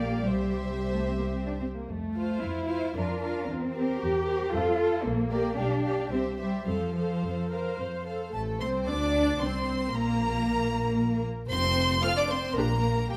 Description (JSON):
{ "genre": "quick classical-period movement for string orchestra", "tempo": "112 BPM", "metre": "3/4", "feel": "rubato", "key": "F major", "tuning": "A4 = 439 Hz", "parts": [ { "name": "clear chamber violin section", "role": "melody", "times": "0.0-13.2 s", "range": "C5 to F6", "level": "-37 LUFS", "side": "equal", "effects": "none" }, { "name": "warm chamber violin section", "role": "second line", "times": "0.0-13.2 s", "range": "G4 to F5", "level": "-37 LUFS", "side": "equal", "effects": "none" }, { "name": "warm studio viola section", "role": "accompaniment", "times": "0.0-12.7 s", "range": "A3 to C5", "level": "-35 LUFS", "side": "equal", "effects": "none" }, { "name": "warm chamber cello section", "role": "bass", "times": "0.0-13.2 s", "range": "F3 to G4", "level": "-34 LUFS", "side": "equal", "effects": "none" }, { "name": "warm chamber double bass section", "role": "bass", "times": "0.0-13.2 s", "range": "F1 to F2", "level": "-35 LUFS", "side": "equal", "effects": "none" } ], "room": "moderate recital hall reverb, RT60 1.7 s", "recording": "none", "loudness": "-28 LUFS", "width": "mono", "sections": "0.0-8.3 A section; 8.3-13.2 B section", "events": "none", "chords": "0.2 C; 1.9 F; 2.9 Bb/F; 3.5 C7/E; 4.5 F; 5.0 Gm/Bb; 5.6 G7/B; 6.1 C; 6.7 F; 8.3 Amadd11; 9.9 N.C.; 11.5 F5; 12.6 Gm/Bb" }